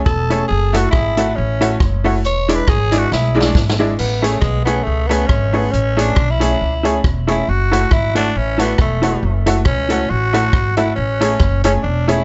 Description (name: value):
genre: ska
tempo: 138 BPM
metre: 4/4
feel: swing 56% on 8ths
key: A major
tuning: A4 = 440 Hz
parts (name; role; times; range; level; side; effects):
- growling tenor saxophone; melody; 0.1-12.2 s; G#3 to C#5; -22 LUFS; equal; tape echo
- upright bass; bass; 0.1-12.2 s; E1 to C#2; -21 LUFS; equal; none
- vintage drum kit; drums; 0.1-12.2 s; crash cymbal, hi-hat, kick drum, rim click, snare drum; -21 LUFS; equal; none
- hollow-body jazz guitar; accompaniment; 0.3-12.2 s; E4 to D5; -23 LUFS; equal; none
- clear upright piano; stabs; 0.3-12.2 s; G#3 to G#4; -23 LUFS; equal; none
room: light reverb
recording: nothing above 7.8 kHz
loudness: -16 LUFS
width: mono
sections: 0.0-4.0 A section; 4.0-12.2 A section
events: tenor saxophone solo 0.0-4.0, 4.0-12.2; drum fill 3.1-4.0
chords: 0.5 F#m7; 2.2 E7; 4.0 Amaj7; 7.5 F#m7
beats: 0.06 | 0.50 0.93 1.37 1.80 | 2.24 2.67 3.11 3.55 | 3.98 4.42 4.86 5.29 | 5.73 6.17 6.60 7.04 | 7.47 7.91 8.35 8.78 | 9.22 9.66 10.09 10.53 | 10.97 11.40 11.84